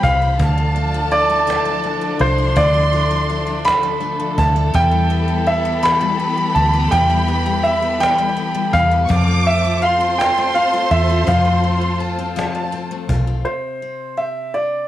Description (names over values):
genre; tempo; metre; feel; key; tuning
six-eight pop ballad; 55 BPM (dotted quarters); 6/8; straight; unclear; A4 = 442 Hz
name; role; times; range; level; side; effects
warm grand piano; melody; 0.0-14.9 s; C5 to B5; -18 LUFS; right 1 dB; cassette tape, plate reverb
warm studio violin section; second line; 0.0-13.0 s; A5 to D6; -24 LUFS; equal; plate reverb
picked steel-string acoustic guitar; accompaniment; 0.0-14.9 s; C3 to G4; -26 LUFS; left 10 dB; none
warm studio string section; sustained chords; 0.0-13.4 s; E3 to C5; -26 LUFS; equal; plate reverb
vintage muted fingered electric bass; bass; 0.0-13.4 s; B1 to F2; -19 LUFS; equal; none
cajon; drums; 0.0-13.3 s; none; -27 LUFS; equal; none
room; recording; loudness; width
light reverb; home recording on cassette; -15 LUFS; side -13 dB against mid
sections
0.0-13.5 A section; 13.5-14.9 B section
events
none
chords
0.4 Dmadd9; 4.7 Em; 9.1 F; 13.5 Csus2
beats
| 0.39 1.48 | 2.57 3.66 | 4.74 5.83 | 6.92 8.01 | 9.10 10.18 | 11.27 12.36 | 13.45 14.54